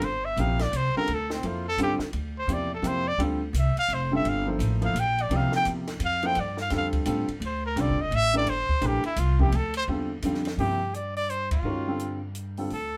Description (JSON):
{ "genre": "modal jazz", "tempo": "170 BPM", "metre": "3/4", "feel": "swing 62% on 8ths", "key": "G dorian", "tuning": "A4 = 440 Hz", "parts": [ { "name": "clear trumpet", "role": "melody", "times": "0.0-13.0 s", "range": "C4 to G5", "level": "-30 LUFS", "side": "equal", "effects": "none" }, { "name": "upright bass", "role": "bass", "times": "0.0-13.0 s", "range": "F1 to A2", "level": "-31 LUFS", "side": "equal", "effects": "none" }, { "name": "compact cocktail drum kit", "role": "drums", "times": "0.0-12.8 s", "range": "hi-hat, kick drum, ride cymbal, snare drum", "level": "-38 LUFS", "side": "equal", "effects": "none" }, { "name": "warm baby grand piano", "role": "accompaniment", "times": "0.4-12.7 s", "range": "C3 to C5", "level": "-31 LUFS", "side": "equal", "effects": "none" } ], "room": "moderate small room reverb, RT60 0.5 s", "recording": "band playing live in one room", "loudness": "-27 LUFS", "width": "mono", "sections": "0.0-10.6 A section; 10.6-13.0 B section", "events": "trumpet solo 0.0-10.6; band accent 11.5", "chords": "0.0 G9sus4", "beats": "| 0.02 0.37 0.73 | 1.08 1.43 1.78 | 2.14 2.49 2.84 | 3.19 3.55 3.90 | 4.25 4.60 4.96 | 5.31 5.66 6.01 | 6.36 6.71 7.07 | 7.42 7.77 8.12 | 8.47 8.82 9.18 | 9.53 9.88 10.23 | 10.59 10.94 11.29 | 11.65 12.00 12.35 | 12.71" }